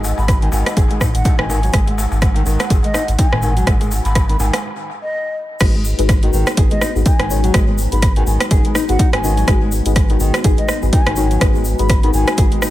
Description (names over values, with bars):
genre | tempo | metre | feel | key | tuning
afro house | 124 BPM | 4/4 | swing 57% on 16ths | G# minor | A4 = 440 Hz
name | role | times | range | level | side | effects
dark analog pad | sustained chords | 0.0-12.7 s | G#3 to F#5 | -27 LUFS | equal | chorus, sidechain pumping
nylon-string guitar | arpeggios | 0.0-12.7 s | D#3 to G#4 | -25 LUFS | left 1 dB | sidechain pumping, tape echo
warm sub bass | bass | 0.0-12.5 s | G#1 | -18 LUFS | equal | sidechain pumping
darbuka | percussion | 0.0-4.6 s | none | -26 LUFS | left 2 dB | tape echo
egg shaker | percussion | 0.0-12.7 s | none | -31 LUFS | left 1 dB | tape echo
breathy hollow bansuri | melody | 0.2-12.4 s | D#5 to B5 | -25 LUFS | equal | vintage 12-bit sampler grit, tape echo
deep house drum kit | drums | 0.3-12.7 s | crash cymbal, hi-hat, rim click | -22 LUFS | right 1 dB | overdrive
electronic kick drum | drums | 0.3-12.5 s | none | -16 LUFS | equal | overdrive
deep mellow chord stab | stabs | 5.6-12.7 s | D#4 to C#5 | -24 LUFS | left 6 dB | chorus, phaser, sidechain pumping, tape echo
room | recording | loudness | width
light reverb, small room ambience | echo-heavy mix | -13 LUFS | side -15 dB against mid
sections
0.0-5.6 A section; 5.6-12.7 B section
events
break 4.6-5.6; drop 5.6-12.7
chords
0.0 G#m7